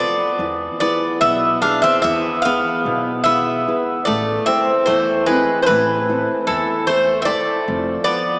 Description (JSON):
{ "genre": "greek folk, Greek bouzouki band", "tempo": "148 BPM (eighths)", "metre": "9/8", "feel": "straight", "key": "E phrygian dominant", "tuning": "A4 = 441 Hz", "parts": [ { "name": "Greek bouzouki", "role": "melody", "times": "0.0-8.4 s", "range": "A4 to F5", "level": "-17 LUFS", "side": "equal", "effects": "none" }, { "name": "Greek bouzouki", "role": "second line", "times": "0.0-8.4 s", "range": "E3 to D4", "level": "-22 LUFS", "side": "equal", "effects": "none" }, { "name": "nylon-string guitar", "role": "accompaniment", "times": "0.0-8.4 s", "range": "B2 to C5", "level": "-23 LUFS", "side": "equal", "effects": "none" }, { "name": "upright bass", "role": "bass", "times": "0.4-8.0 s", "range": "F1 to E2", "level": "-30 LUFS", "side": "equal", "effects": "none" } ], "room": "wet cathedral reverb, RT60 5.2 s", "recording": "in a vast, echoing space, small speaker sound", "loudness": "-15 LUFS", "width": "side -35 dB against mid", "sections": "0.4-8.4 A section", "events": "speeding up 0.0-8.4", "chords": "0.4 E; 4.1 Am; 7.7 F" }